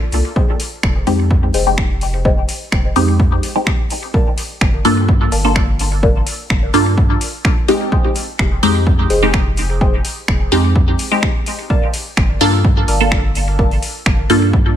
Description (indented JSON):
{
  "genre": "dub techno",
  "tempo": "127 BPM",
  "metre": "4/4",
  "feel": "straight",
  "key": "F dorian",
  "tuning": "A4 = 440 Hz",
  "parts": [
    { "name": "warm sub bass", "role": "bass", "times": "0.1-14.7 s", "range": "F1 to G2", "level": "-18 LUFS", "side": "equal", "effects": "sidechain pumping" },
    { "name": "deep house drum kit", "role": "drums", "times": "0.1-14.4 s", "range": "finger snaps, hi-hat", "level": "-23 LUFS", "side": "equal", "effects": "overdrive, small room reverb, dub echo" },
    { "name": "filtered dub chord stab", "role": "riff", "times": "0.4-13.7 s", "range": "Ab4 to A5", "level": "-23 LUFS", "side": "left 1 dB", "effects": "phaser, cassette tape, sidechain pumping, dub echo" },
    { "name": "electronic kick drum", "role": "drums", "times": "0.4-14.6 s", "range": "none", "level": "-16 LUFS", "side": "equal", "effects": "small room reverb" },
    { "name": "filtered dub chord stab", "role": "stabs", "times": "1.1-14.6 s", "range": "Ab3 to A4", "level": "-18 LUFS", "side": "equal", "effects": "phaser, sidechain pumping, dub echo" }
  ],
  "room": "digital ambience",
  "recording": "none",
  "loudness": "-13 LUFS",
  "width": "side -10 dB against mid",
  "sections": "0.4-14.8 A section",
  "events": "none",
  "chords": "0.4 Fm7; 4.1 Gm7; 7.9 Fm7; 11.7 Gm7"
}